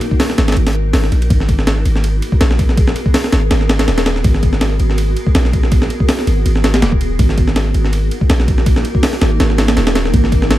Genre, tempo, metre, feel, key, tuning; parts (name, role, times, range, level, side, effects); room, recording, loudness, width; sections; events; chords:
drum and bass, jungle; 163 BPM; 4/4; swing 54% on 16ths; G# minor; A4 = 440 Hz
granular cloud pad; sustained chords; 0.0-10.6 s; A#3 to A#4; -22 LUFS; equal; built-in reverb
breakbeat sampler-style drum kit; drums; 0.0-10.6 s; hi-hat, kick drum, ride cymbal, snare drum; -14 LUFS; equal
long sustained 808-style bass; bass; 0.4-10.6 s; D#1 to A#1; -15 LUFS; equal
little or no reverb; -11 LUFS; side -14 dB against mid
0.0-10.6 A section
0.0 D#m; 1.3 G#m9; 7.2 D#m